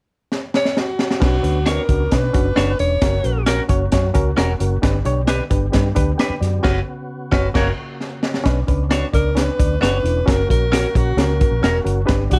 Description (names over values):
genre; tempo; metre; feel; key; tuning
uptempo 1960s-style soul; 132 BPM; 4/4; straight; B harmonic minor; A4 = 444 Hz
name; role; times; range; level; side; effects
crunchy breakbeat drum kit; drums; 0.3-12.4 s; crash cymbal, hi-hat, kick drum, snare drum; -22 LUFS; equal; none
breathy alto saxophone; melody; 0.6-3.4, 9.1-12.4 s; F#4 to C#5; -24 LUFS; equal; none
reed electric piano; accompaniment; 1.2-12.4 s; C#4 to G5; -26 LUFS; equal; tube saturation
tonewheel organ; sustained chords; 1.2-12.4 s; C#3 to G4; -34 LUFS; equal; chorus vibrato, stopped rotary speaker
vintage muted fingered electric bass; bass; 1.2-12.4 s; E1 to B2; -23 LUFS; equal; none
direct-recorded clean electric guitar; stabs; 1.7-11.8 s; C#4 to C#5; -25 LUFS; equal; lush chorus
warm horn section; second line; 7.5-7.7 s; A#3 to C#5; -26 LUFS; equal; none
room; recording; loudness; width
little or no reverb; none; -18 LUFS; mono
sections
0.0-1.2 A section; 1.2-8.5 B section; 8.5-12.4 C section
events
drum fill 0.3-1.2, 8.0-8.5; band accent 6.6-8.5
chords
0.0 N.C.; 1.2 Bmadd9; 3.0 F#; 4.8 G; 6.6 F#sus4; 7.5 F#; 8.5 Bmadd9; 10.3 F#